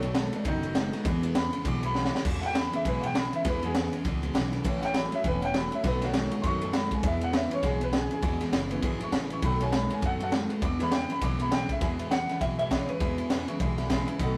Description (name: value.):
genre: rockabilly.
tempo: 201 BPM.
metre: 4/4.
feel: swing 60% on 8ths.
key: E major.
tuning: A4 = 445 Hz.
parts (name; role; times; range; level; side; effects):
clear upright piano; accompaniment; 0.0-14.3 s; D#3 to D6; -35 LUFS; equal; none.
picked steel-string acoustic guitar; accompaniment; 0.0-14.4 s; E2 to F#4; -39 LUFS; equal; none.
electric guitar through a small old amp; riff; 0.0-14.4 s; E2 to G#3; -37 LUFS; equal; none.
upright bass; bass; 0.0-14.4 s; E1 to F#2; -36 LUFS; equal; none.
raw garage drum kit; drums; 0.0-14.3 s; crash cymbal, kick drum, ride cymbal, snare drum; -32 LUFS; equal; none.
electric guitar through a small old amp; melody; 12.1-13.7 s; B4 to F#5; -34 LUFS; equal; none.
room: moderate studio reverb, RT60 0.6 s.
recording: rough rehearsal-room recording.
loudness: -28 LUFS.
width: mono.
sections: 0.0-2.3 A section; 2.3-11.8 A section; 11.8-14.4 B section.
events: upright piano solo 0.0-11.8; drum fill 2.0.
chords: 0.0 B7; 1.1 E; 4.6 A; 5.8 B7; 7.0 E; 9.4 B7; 10.6 E.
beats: 0.15 0.45 0.75 | 1.05 1.35 1.65 1.95 | 2.25 2.55 2.85 3.15 | 3.45 3.75 4.05 4.35 | 4.65 4.95 5.24 5.54 | 5.84 6.14 6.44 6.74 | 7.04 7.33 7.63 7.93 | 8.23 8.53 8.83 9.13 | 9.43 9.72 10.02 10.32 | 10.62 10.92 11.22 11.51 | 11.81 12.11 12.41 12.71 | 13.00 13.30 13.60 13.90 | 14.20.